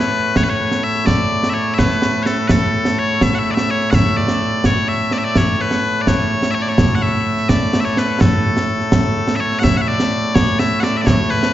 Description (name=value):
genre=scottish traditional, Scottish pipe music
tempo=84 BPM (dotted quarters)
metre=6/8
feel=straight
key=A major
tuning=A4 = 443 Hz
part: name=loud bright bagpipes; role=melody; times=0.0-11.5 s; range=A2 to F#5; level=-17 LUFS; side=left 1 dB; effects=none
part: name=concert snare drum and concert bass drum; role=drums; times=0.0-11.5 s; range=none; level=-17 LUFS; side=right 1 dB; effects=none
room=wet scoring stage reverb, RT60 1.6 s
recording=heard from further back in the room, nothing above 7.7 kHz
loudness=-14 LUFS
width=side -13 dB against mid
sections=0.0-9.6 A section; 9.6-11.5 A section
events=none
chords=none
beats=0.35 | 1.07 1.78 | 2.50 3.21 | 3.92 4.64 | 5.35 6.07 | 6.78 7.50 | 8.21 8.93 | 9.64 10.35 | 11.07